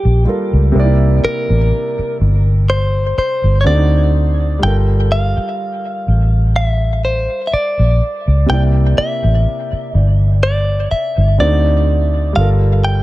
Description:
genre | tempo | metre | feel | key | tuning
contemporary R&B | 62 BPM | 4/4 | swing 54% on 16ths | G dorian | A4 = 440 Hz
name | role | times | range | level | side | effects
direct-recorded clean electric guitar | melody | 0.0-13.0 s | G4 to G5 | -19 LUFS | equal | dub echo
warm grand piano | accompaniment | 0.0-13.0 s | C3 to D5 | -21 LUFS | right 1 dB | dub echo
vintage muted fingered electric bass | bass | 0.0-13.0 s | G1 to D2 | -12 LUFS | equal | none
room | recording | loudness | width
light reverb, small room ambience | echo-heavy mix | -12 LUFS | side -17 dB against mid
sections
0.0-13.0 A section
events
none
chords
0.0 Gm9; 0.8 C9; 3.7 D7b9; 4.6 Gm9; 8.5 C9; 11.4 D7b9; 12.4 Gm9

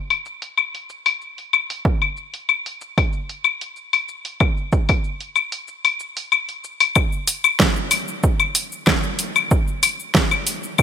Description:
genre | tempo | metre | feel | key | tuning
downtempo | 94 BPM | 4/4 | straight | none | none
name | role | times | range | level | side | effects
deep house drum kit | drums | 0.1-10.8 s | cabasa, claves, hi-hat, snare drum | -18 LUFS | left 4 dB | overdrive, low-pass filter on hats, studio reverb, low-pass filter on snare, low-pass filter on perc
electronic kick drum | drums | 1.9-10.8 s | none | -19 LUFS | right 1 dB | overdrive, studio reverb
room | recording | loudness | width
light reverb | none | -18 LUFS | side -8 dB against mid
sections
0.0-7.0 A section; 7.0-10.8 B section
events
none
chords
none

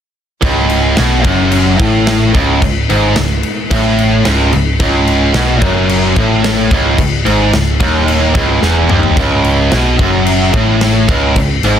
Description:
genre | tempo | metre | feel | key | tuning
heavy metal | 110 BPM | 4/4 | straight | C# minor | A4 = 439 Hz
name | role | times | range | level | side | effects
tight distorted guitar | riff | 0.4-11.8 s | C#2 to B2 | -12 LUFS | equal | distortion
hollow-body short-scale picked electric bass | bass | 0.4-11.8 s | C#1 to B1 | -15 LUFS | equal | none
big rock drum kit | drums | 0.4-11.8 s | crash cymbal, kick drum, snare drum, toms | -16 LUFS | equal | none
room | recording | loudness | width
light reverb | dense, heavily limited modern master | -9 LUFS | side -9 dB against mid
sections
0.4-11.8 A section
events
drum fill 8.6-9.2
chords
none

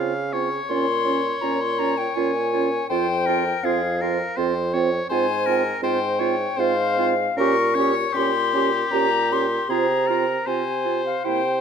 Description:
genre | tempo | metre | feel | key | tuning
classical, slow romantic movement for wind quintet | 80 BPM | 3/4 | uneven beats, rubato | F minor | A4 = 439 Hz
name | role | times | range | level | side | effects
bright oboe | second line | 0.0-11.6 s | G4 to F5 | -28 LUFS | left 2 dB | none
mellow French horn | accompaniment | 0.0-11.4 s | Bb3 to Db4 | -29 LUFS | right 3 dB | none
warm clarinet | accompaniment | 0.0-11.4 s | E4 to G4 | -28 LUFS | right 12 dB | none
mellow bassoon | bass | 0.0-11.6 s | F2 to Db3 | -25 LUFS | right 2 dB | none
concert flute | melody | 0.3-11.6 s | F5 to Db6 | -24 LUFS | left 8 dB | none
room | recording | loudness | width
moderate recital hall reverb, RT60 1.4 s | none | -19 LUFS | side -7 dB against mid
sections
0.0-11.6 A section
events
none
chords
0.0 Dbmaj7; 0.7 Bbm; 2.9 F5; 5.1 Fm/Ab; 7.4 Gdim/Bb; 9.7 F5/C

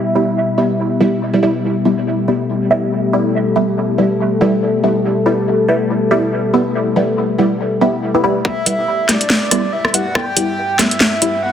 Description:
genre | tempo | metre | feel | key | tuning
deep dubstep | 141 BPM | 4/4 | swing 56% on 16ths, half-time | E minor | A4 = 440 Hz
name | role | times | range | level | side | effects
deep dark ambient pad | sustained chords | 0.0-11.5 s | G3 to E5 | -18 LUFS | left 2 dB | chorus, built-in reverb
filtered dub chord stab | stabs | 0.2-11.3 s | G3 to E4 | -16 LUFS | right 1 dB | phaser, analog chorus, dub echo
electronic kick drum | drums | 8.4-10.2 s | none | -18 LUFS | equal | high-pass filter on kick, high-pass filter on room
breathy flute-like synth lead | melody | 8.5-11.5 s | D5 to G5 | -19 LUFS | right 1 dB | wide subtle chorus, dub echo
garage drum kit | drums | 8.7-11.3 s | hi-hat, rim click, snare drum | -14 LUFS | equal | none
room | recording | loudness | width
wet echo chamber reverb, RT60 2.4 s | dense, heavily limited modern master | -13 LUFS | side -9 dB against mid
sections
0.0-8.5 A section; 8.5-11.5 B section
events
build-up 8.5-11.5; filter sweep on ambient pad 8.5-11.5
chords
0.0 Em

